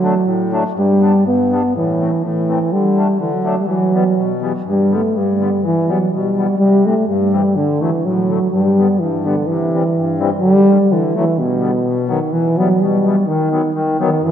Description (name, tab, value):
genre	alpine folk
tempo	125 BPM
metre	2/4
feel	swing 53% on 8ths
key	G major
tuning	A4 = 442 Hz
part	dark euphonium	melody	0.0-14.3 s	B2 to B3	-14 LUFS	right 1 dB	none
part	mellow accordion	accompaniment	0.0-14.3 s	F#2 to D4	-20 LUFS	left 3 dB	none
room	wet concert hall reverb, RT60 2.3 s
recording	minimal, uncompressed stereo recording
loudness	-13 LUFS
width	side -9 dB against mid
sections	0.0-12.3 A section; 12.3-14.3 B section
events	none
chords	0.0 D; 0.8 G; 1.7 Am; 2.7 Dsus4; 3.2 D; 3.7 Emadd9; 4.7 G; 5.6 Em; 6.6 C; 7.5 D; 8.5 G; 9.5 C; 10.4 Dsus4; 10.9 Dadd9; 11.4 G; 11.8 B; 12.3 Em; 13.3 B/D#